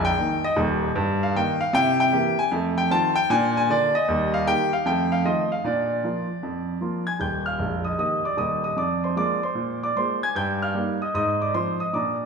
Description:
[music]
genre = jazz, stride piano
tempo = 153 BPM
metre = 4/4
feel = swing 65% on 8ths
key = Eb major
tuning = A4 = 440 Hz
[part]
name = warm baby grand piano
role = solo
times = 0.0-12.3 s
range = Bb0 to Ab6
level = -21 LUFS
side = equal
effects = none
[sound]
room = wet recital hall reverb, RT60 1.8 s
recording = recorded in a church or concert hall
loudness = -21 LUFS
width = side -5 dB against mid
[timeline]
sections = 0.0-7.2 A section; 7.2-12.3 B section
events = none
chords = 0.0 Eb; 1.0 Eb/G; 1.7 C7; 2.5 F7; 3.3 Bb; 4.1 Eb; 4.9 F7; 5.6 Bb; 7.2 Eb; 8.8 Bb7/F; 10.3 Eb/G; 11.1 Fm/Ab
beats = 0.18 0.57 | 0.96 1.35 1.74 2.13 | 2.52 2.91 3.30 3.69 | 4.08 4.47 4.86 5.25 | 5.64 6.03 6.42 6.81 | 7.20 7.59 7.99 8.38 | 8.77 9.17 9.56 9.95 | 10.35 10.74 11.14 11.53 | 11.93

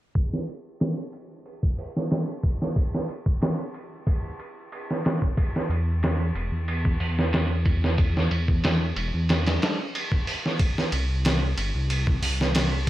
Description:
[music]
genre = trip hop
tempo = 92 BPM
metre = 4/4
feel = straight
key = unclear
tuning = A4 = 443 Hz
[part]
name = trip hop sampler-style drum kit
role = drums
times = 0.2-12.9 s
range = hi-hat, kick drum, ride cymbal, snare drum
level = -24 LUFS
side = equal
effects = low-pass filter on cymbals, low-pass filter on kick, low-pass filter on snare, low-pass filter on hats, low-pass filter on room
[part]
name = dark detuned saw bass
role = bass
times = 5.7-12.9 s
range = E1 to E2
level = -24 LUFS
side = equal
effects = tube saturation
[sound]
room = little or no reverb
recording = vinyl crackle, low-pass filter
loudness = -23 LUFS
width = side -15 dB against mid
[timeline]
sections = 0.2-10.6 A section; 10.6-12.9 B section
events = filter sweep 0.2-10.6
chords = none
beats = | 0.16 0.81 1.46 2.11 | 2.77 3.42 4.07 4.72 | 5.38 6.03 6.68 7.33 | 7.98 8.64 9.29 9.94 | 10.59 11.24 11.90 12.55

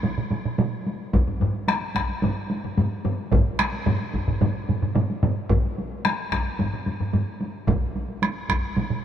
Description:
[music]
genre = japanese traditional, taiko drum ensemble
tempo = 110 BPM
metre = 4/4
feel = straight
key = none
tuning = none
[part]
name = solo taiko drums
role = percussion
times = 0.0-9.0 s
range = none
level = -28 LUFS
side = equal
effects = none
[part]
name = solo taiko drums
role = percussion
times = 0.0-9.0 s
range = none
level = -27 LUFS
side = right 4 dB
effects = none
[part]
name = taiko ensemble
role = percussion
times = 1.1-7.3 s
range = none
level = -25 LUFS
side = left 2 dB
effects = none
[part]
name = taiko ensemble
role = percussion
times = 1.1-8.6 s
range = none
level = -26 LUFS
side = equal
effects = none
[sound]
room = moderate huge ambient reverb, RT60 4.2 s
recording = minimal, uncompressed stereo recording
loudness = -22 LUFS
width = side -9 dB against mid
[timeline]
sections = 0.0-9.0 A section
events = none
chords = none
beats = 0.04 0.58 | 1.13 1.68 2.23 2.77 | 3.32 3.87 4.41 4.96 | 5.50 6.05 6.59 7.14 | 7.68 8.23 8.77

